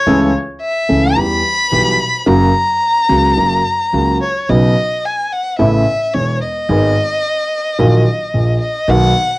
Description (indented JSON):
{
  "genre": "tango",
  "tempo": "109 BPM",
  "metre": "4/4",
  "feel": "rubato",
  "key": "B major",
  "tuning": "A4 = 438 Hz",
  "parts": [
    { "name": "warm violin", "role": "second line", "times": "0.0-9.4 s", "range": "C#5 to B5", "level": "-15 LUFS", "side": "left 1 dB", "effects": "none" },
    { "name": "warm concert grand piano", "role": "accompaniment", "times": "0.1-9.1 s", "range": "E1 to A4", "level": "-14 LUFS", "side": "equal", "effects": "none" },
    { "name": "upright bass", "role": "bass", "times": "0.1-9.1 s", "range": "E1 to E2", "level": "-18 LUFS", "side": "right 1 dB", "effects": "none" }
  ],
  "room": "moderate studio ambience, RT60 0.5 s",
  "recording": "home recording on cassette",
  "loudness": "-12 LUFS",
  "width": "side -20 dB against mid",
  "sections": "0.0-4.5 A section; 4.5-9.4 A section",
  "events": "violin solo 0.0-4.5, 4.5-9.4",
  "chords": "0.1 A/C#; 1.2 Em; 2.3 F#; 4.5 Badd9; 5.6 Aadd9; 6.7 G#m; 7.8 D#m/A#; 8.9 Bmaj7"
}